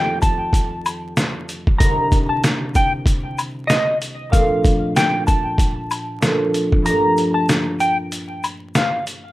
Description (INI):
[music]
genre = hip hop, boom-bap hip-hop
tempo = 95 BPM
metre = 4/4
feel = swing 57% on 16ths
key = C dorian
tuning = A4 = 440 Hz
[part]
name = clean electric guitar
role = melody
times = 0.0-9.0 s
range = Eb5 to Bb5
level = -21 LUFS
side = equal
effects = analog chorus, high-pass filter, low-pass filter, plate reverb, digital delay
[part]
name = concert harp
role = accompaniment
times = 0.0-9.3 s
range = C2 to D4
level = -22 LUFS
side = right 1 dB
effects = cassette tape, high-pass filter, low-pass filter, plate reverb
[part]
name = trip hop sampler-style drum kit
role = drums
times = 0.2-9.2 s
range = hi-hat, kick drum, snare drum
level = -18 LUFS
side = equal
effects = none
[part]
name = tube shaker and woodblock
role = percussion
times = 0.2-9.2 s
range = none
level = -28 LUFS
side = left 3 dB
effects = none
[sound]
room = light reverb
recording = rough home demo mix, vinyl crackle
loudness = -16 LUFS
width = side -17 dB against mid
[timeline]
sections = 0.0-9.3 A section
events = kick muted 6.9-9.3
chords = 0.0 F7; 1.8 Cm7; 4.3 Bbmaj7; 6.9 Gm7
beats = 0.54 1.17 | 1.80 2.44 3.07 3.70 | 4.33 4.96 5.59 6.22 | 6.86 7.49 8.12 8.75